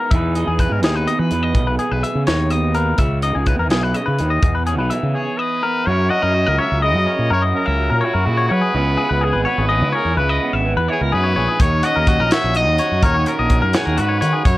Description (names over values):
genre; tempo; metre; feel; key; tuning
math rock and midwest emo; 84 BPM (dotted quarters); 6/8; straight; unclear; A4 = 440 Hz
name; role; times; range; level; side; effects
electric guitar through a small old amp; accompaniment; 0.0-14.6 s; E2 to B4; -24 LUFS; right 5 dB; none
twangy electric guitar; arpeggios; 0.0-14.5 s; F#4 to E5; -21 LUFS; left 3 dB; none
fuzz fingered electric bass; bass; 0.1-14.6 s; G#1 to F#3; -19 LUFS; equal; overdrive
crisp fusion drum kit; drums; 0.1-5.0, 11.6-14.6 s; hi-hat, kick drum, snare drum; -19 LUFS; equal; none
bright trumpet; melody; 5.1-14.6 s; F#4 to E5; -21 LUFS; left 1 dB; none
room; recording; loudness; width
light reverb; worn, warbling old tape, cassette tape, warbly pitch drift; -15 LUFS; side -17 dB against mid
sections
0.0-5.9 A section; 5.9-14.6 B section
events
break 5.2-5.9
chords
0.1 C#m9; 5.9 F#7; 8.7 C#m7; 11.6 D#m7